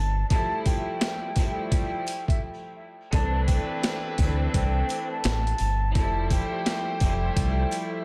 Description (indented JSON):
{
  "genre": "hip hop, boom-bap hip-hop",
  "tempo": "85 BPM",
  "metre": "4/4",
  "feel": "swing 62% on 16ths",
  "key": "unclear",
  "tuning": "A4 = 440 Hz",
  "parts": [
    { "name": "breathy mellow concert flute", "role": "melody", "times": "0.0-8.0 s", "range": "E5 to A5", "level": "-34 LUFS", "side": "equal", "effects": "high-pass filter, low-pass filter, tape echo" },
    { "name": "deep dub fingered electric bass", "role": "bass", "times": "0.0-7.6 s", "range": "F1 to D2", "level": "-28 LUFS", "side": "equal", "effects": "none" },
    { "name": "rich studio string section", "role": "accompaniment", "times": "0.3-8.0 s", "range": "E3 to E4", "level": "-35 LUFS", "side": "equal", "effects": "cassette tape, high-pass filter, low-pass filter, tape echo" },
    { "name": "boom bap sampler-style drum kit", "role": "drums", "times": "0.3-7.9 s", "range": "hi-hat, kick drum, snare drum", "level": "-28 LUFS", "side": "equal", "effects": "none" },
    { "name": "sleigh bells", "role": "percussion", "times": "0.3-7.9 s", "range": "none", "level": "-48 LUFS", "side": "equal", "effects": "tape echo" },
    { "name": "brilliant trumpet section", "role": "stabs", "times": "3.1-8.0 s", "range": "G3 to C5", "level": "-41 LUFS", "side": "equal", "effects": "high-pass filter, low-pass filter, tape echo" }
  ],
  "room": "light reverb, small room ambience",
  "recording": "echo-heavy mix",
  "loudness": "-26 LUFS",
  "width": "mono",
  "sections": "0.0-8.0 A section",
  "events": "break 2.4-3.1",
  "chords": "0.3 Fmaj9; 3.1 C69; 6.0 Fmaj9"
}